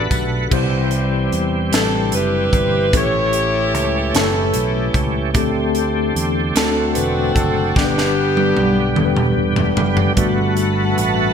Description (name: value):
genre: slow gospel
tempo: 50 BPM (dotted quarters)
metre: 6/8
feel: straight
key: G major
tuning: A4 = 440 Hz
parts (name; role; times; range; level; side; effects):
- bright tine electric piano; accompaniment; 0.0-11.3 s; G2 to D5; -21 LUFS; left 2 dB; medium stereo tremolo
- bright tonewheel organ; sustained chords; 0.0-11.3 s; D3 to F#5; -23 LUFS; right 2 dB; slow rotary speaker, overdrive, chorus vibrato
- fingered electric bass; bass; 0.0-11.3 s; E1 to E2; -22 LUFS; equal; none
- crisp fusion drum kit; drums; 0.1-11.2 s; crash cymbal, hi-hat, kick drum, snare drum, toms; -20 LUFS; right 1 dB; gated reverb
- tambourine; percussion; 0.1-0.5 s; none; -38 LUFS; left 8 dB; none
- clear saxophone section; melody; 1.7-9.4 s; B3 to C#5; -20 LUFS; left 1 dB; none
- warm studio string section; sustained chords; 10.2-11.3 s; B4 to A5; -28 LUFS; left 1 dB; none
room: moderate lush hall reverb, RT60 1.8 s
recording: bright 1980s-style digital production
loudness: -15 LUFS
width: side -7 dB against mid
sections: 0.5-10.2 A section; 10.2-11.3 B section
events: drum fill 7.8-10.2; tonewheel organ solo 10.2-11.3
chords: 0.0 Gmaj9; 0.5 C; 2.9 A7; 5.3 D7sus4; 6.6 D7; 7.8 G; 10.2 Gmaj9